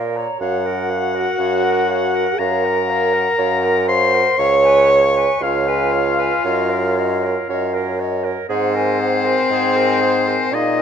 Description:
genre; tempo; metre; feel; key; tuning
classical, slow romantic movement for wind quintet; 60 BPM; 4/4; rubato; unclear; A4 = 440 Hz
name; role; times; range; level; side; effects
mellow hollow silver concert flute; melody; 0.0-10.8 s; Db5 to Bb5; -25 LUFS; left 9 dB; none
bright clarinet; accompaniment; 0.0-10.8 s; Ab4 to Db5; -26 LUFS; right 9 dB; none
warm bassoon; bass; 0.0-10.8 s; Db2 to Bb2; -21 LUFS; right 3 dB; none
bright oboe; second line; 0.4-10.8 s; C5 to Db6; -21 LUFS; left 4 dB; none
warm French horn; accompaniment; 0.4-10.8 s; C4 to Db5; -19 LUFS; equal; none
room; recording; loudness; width
moderate recital hall reverb, RT60 1.4 s; none; -15 LUFS; side -8 dB against mid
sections
0.0-10.8 A section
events
none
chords
0.4 Gbmaj7; 4.4 Db7; 6.5 Gb6; 8.5 Ab9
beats
| 0.41 1.39 2.39 3.39 | 4.39 5.42 6.46 7.50 | 8.50 9.51 10.54

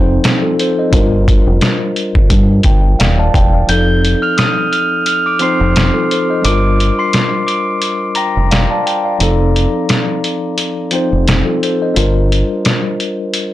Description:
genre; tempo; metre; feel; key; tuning
hip hop, boom-bap hip-hop; 87 BPM; 4/4; swing 56% on 16ths; unclear; A4 = 440 Hz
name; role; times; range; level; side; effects
tine electric piano; accompaniment; 0.0-13.5 s; F3 to A5; -16 LUFS; left 1 dB; fast stereo tremolo, high-pass filter, low-pass filter, plate reverb
deep dub fingered electric bass; bass; 0.0-12.4 s; Eb1 to G2; -13 LUFS; equal; tube saturation
trip hop sampler-style drum kit; drums; 0.2-13.5 s; hi-hat, kick drum, snare drum; -15 LUFS; equal; none
glockenspiel with rubber mallets; melody; 3.7-9.2 s; Bb5 to G7; -17 LUFS; equal; high-pass filter, low-pass filter, plate reverb, analog delay
room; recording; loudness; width
light reverb; blown-out, overdriven recording, overdrive; -11 LUFS; side -14 dB against mid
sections
0.0-3.7 A section; 3.7-13.5 B section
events
break 3.7-13.5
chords
0.0 F7; 0.9 Gm7; 3.7 F7; 6.4 Gm7; 9.2 F7; 12.0 Gm7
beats
0.24 | 0.93 1.62 2.31 3.00 | 3.69 4.38 5.07 5.76 | 6.45 7.13 7.83 8.52 | 9.20 9.89 10.58 11.27 | 11.96 12.65 13.34

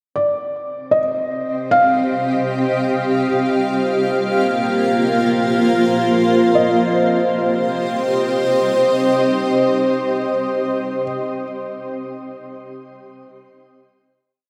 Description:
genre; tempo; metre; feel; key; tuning
ambient; free time; none; none; C minor; A4 = 440 Hz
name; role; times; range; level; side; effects
granular cloud pad; sustained chords; 1.2-10.5 s; Bb3 to F5; -19 LUFS; equal; built-in reverb, shimmer reverb
felt-muted upright piano; melody; 0.2-11.0 s; D5 to F5; -22 LUFS; equal; shimmer reverb, delay
room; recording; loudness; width
wet lush hall reverb, RT60 3.0 s; none; -18 LUFS; mono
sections
0.1-6.5 A section; 6.5-9.7 final chord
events
none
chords
0.1 Cmadd9; 3.3 Bbsus2; 6.5 Cm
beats
free time

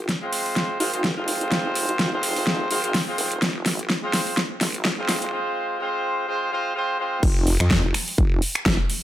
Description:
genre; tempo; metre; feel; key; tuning
bass house; 126 BPM; 4/4; swing 56% on 16ths; F minor; A4 = 444 Hz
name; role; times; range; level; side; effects
vowel-sweep wobble bass; bass; 0.0-8.8 s; Eb1 to F2; -26 LUFS; equal; chorus, tube saturation, sidechain pumping, high-pass filter
big-room dance drum kit; drums; 0.1-9.0 s; crash cymbal, finger snaps, hi-hat, snare drum; -23 LUFS; equal; overdrive
bright horn section; stabs; 0.2-7.2 s; Ab3 to C5; -26 LUFS; equal; sidechain pumping, low-pass filter, digital delay
electronic kick drum; drums; 7.2-8.8 s; none; -21 LUFS; equal; overdrive
room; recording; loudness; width
moderate plate reverb, RT60 1.1 s; high-pass filter; -20 LUFS; side -13 dB against mid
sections
0.0-7.2 A section; 7.2-9.0 B section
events
build-up 0.0-7.2; drum fill 0.0-5.3; drop 7.2-9.0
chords
0.0 Fm; 7.2 N.C.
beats
0.09 0.56 1.04 | 1.51 1.99 2.47 2.94 | 3.42 3.90 4.37 4.85 | 5.33 5.80 6.28 6.75 | 7.23 7.71 8.18 8.66

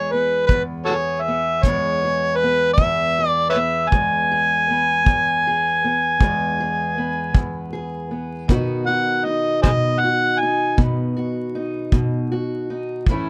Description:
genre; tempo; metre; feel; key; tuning
acoustic country blues, solo or duo; 52 BPM (dotted quarters); 12/8; straight; E major; A4 = 439 Hz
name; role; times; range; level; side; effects
overdriven harmonica; melody; 0.0-10.8 s; F#4 to G#5; -21 LUFS; equal; none
fingerpicked steel-string acoustic guitar; accompaniment; 0.0-13.3 s; E2 to G#4; -26 LUFS; equal; none
kick drum; drums; 0.5-13.2 s; none; -20 LUFS; equal; none
room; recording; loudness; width
light reverb; close, detailed microphones, vinyl crackle; -20 LUFS; mono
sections
0.0-13.3 A section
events
none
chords
0.0 E; 8.5 B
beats
0.49 1.64 2.78 | 3.92 5.06 6.21 7.35 | 8.49 9.64 10.78 11.92 | 13.07

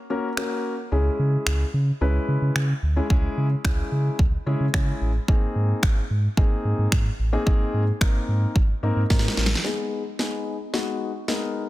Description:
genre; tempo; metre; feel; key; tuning
dance-pop; 110 BPM; 4/4; straight; unclear; A4 = 441 Hz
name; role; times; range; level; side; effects
dark grand piano; accompaniment; 0.1-11.6 s; G#3 to B4; -28 LUFS; left 2 dB; sidechain pumping, low-pass filter
house drum kit; drums; 0.4-11.4 s; finger snaps, kick drum, snare drum; -22 LUFS; equal; soft clipping on snare
sub bass with octave; bass; 0.9-9.6 s; G#1 to C#3; -23 LUFS; equal; sidechain pumping
room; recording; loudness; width
digital ambience; dense, heavily limited modern master; -21 LUFS; side -16 dB against mid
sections
0.0-9.6 A section; 9.6-11.7 B section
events
break 0.0-0.9; drum fill 9.1-9.6, 9.6-11.7; build-up 9.6-11.7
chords
0.0 F#; 0.9 C#m; 5.3 G#add9; 9.6 G#m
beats
0.38 | 0.92 1.47 2.01 2.56 | 3.10 3.65 4.19 4.74 | 5.29 5.83 6.38 6.92 | 7.47 8.01 8.56 9.10 | 9.65 10.19 10.74 11.29

